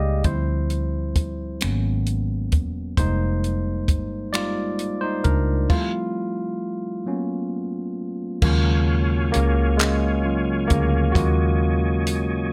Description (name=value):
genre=slow six-eight R&B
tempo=44 BPM (dotted quarters)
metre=6/8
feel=straight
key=Eb minor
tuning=A4 = 440 Hz
part: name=barky tine electric piano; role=accompaniment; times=0.0-12.5 s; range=Db3 to F5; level=-27 LUFS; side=equal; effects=overdrive
part: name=vintage muted fingered electric bass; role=bass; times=0.0-12.5 s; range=Fb1 to Eb2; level=-25 LUFS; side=equal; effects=none
part: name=compact cocktail drum kit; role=drums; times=0.2-12.3 s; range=crash cymbal, finger snaps, handclaps, hi-hat, kick drum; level=-25 LUFS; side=equal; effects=none
part: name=tonewheel organ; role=sustained chords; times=8.4-12.5 s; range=Gb3 to Ab5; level=-32 LUFS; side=equal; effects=chorus vibrato, fast rotary speaker
room=light reverb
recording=none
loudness=-23 LUFS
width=mono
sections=0.0-8.4 A section; 8.4-12.5 B section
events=tine electric piano solo 0.0-8.4, 8.4-12.5; stop 5.7-8.4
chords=0.2 Dm11; 1.6 Abm11; 3.0 Fm11; 5.7 Fmaj9; 7.1 Gbadd11; 8.4 Ebm11